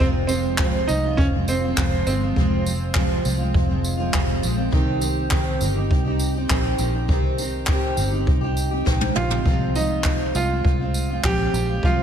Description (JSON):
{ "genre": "acoustic pop", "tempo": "101 BPM", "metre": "4/4", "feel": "straight", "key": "unclear", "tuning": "A4 = 440 Hz", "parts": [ { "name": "bright upright piano", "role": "melody", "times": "0.0-4.4, 9.2-12.0 s", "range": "C4 to G4", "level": "-26 LUFS", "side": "right 3 dB", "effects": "slapback echo" }, { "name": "picked steel-string acoustic guitar", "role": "accompaniment", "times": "0.0-12.0 s", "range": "F2 to G4", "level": "-24 LUFS", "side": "right 1 dB", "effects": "double-tracked left and right, slapback echo" }, { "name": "vintage muted fingered electric bass", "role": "bass", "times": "0.0-12.0 s", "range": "F1 to C2", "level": "-24 LUFS", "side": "equal", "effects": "none" }, { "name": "jazz brush drum kit", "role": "drums", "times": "0.0-12.0 s", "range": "handclaps, kick drum, snare drum, tambourine, toms", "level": "-23 LUFS", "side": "equal", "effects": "none" } ], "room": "light reverb, small room ambience", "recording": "none", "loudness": "-19 LUFS", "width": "side -8 dB against mid", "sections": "0.0-12.0 A section", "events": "drum fill 8.9-9.5", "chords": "0.0 Fm; 4.7 Cm; 9.5 Fm", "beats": "| 0.00 0.59 1.18 1.77 | 2.36 2.96 3.55 4.14 | 4.73 5.32 5.91 6.50 | 7.09 7.68 8.28 8.87 | 9.46 10.05 10.64 11.23 | 11.83" }